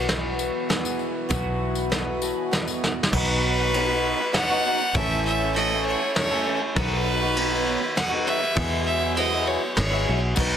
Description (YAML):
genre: folk rock and heartland rock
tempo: 99 BPM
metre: 3/4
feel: straight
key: unclear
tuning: A4 = 440 Hz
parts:
  - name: picked old ladder-braced acoustic guitar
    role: accompaniment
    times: 0.0-10.6 s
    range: A2 to B4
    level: -33 LUFS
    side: left 8 dB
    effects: none
  - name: mellow accordion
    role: sustained chords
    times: 0.0-10.6 s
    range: D#3 to C#5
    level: -35 LUFS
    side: right 3 dB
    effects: none
  - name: electric guitar through a small old amp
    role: riff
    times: 0.0-10.6 s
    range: E2 to A4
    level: -28 LUFS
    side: equal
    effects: analog chorus
  - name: fingered electric bass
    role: bass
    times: 0.0-10.6 s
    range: G#1 to E2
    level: -28 LUFS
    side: equal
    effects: none
  - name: warm baby grand piano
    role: accompaniment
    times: 0.1-10.6 s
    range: B3 to A5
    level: -37 LUFS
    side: right 8 dB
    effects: none
  - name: soft brush drum kit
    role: drums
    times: 0.1-10.5 s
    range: crash cymbal, hi-hat, kick drum, ride cymbal, snare drum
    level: -26 LUFS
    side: equal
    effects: none
  - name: tambourine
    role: percussion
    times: 0.1-2.9, 10.4-10.5 s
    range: none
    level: -36 LUFS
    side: left 10 dB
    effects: none
  - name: clear fiddle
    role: melody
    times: 3.1-10.6 s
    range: B4 to F#5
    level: -26 LUFS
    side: right 1 dB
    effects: none
room: studio ambience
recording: dense, heavily limited modern master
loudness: -21 LUFS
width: side -9 dB against mid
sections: 0.0-3.1 A section; 3.1-10.6 B section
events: grand piano fill 1.9-3.1; drum fill 2.8-3.1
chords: 0.0 Bsus4; 3.1 B; 4.9 A; 6.8 B; 8.6 Eadd9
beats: 0.10 0.70 | 1.31 1.92 2.52 | 3.13 3.74 4.34 | 4.94 5.55 6.15 | 6.75 7.36 7.96 | 8.56 9.16 9.77 | 10.37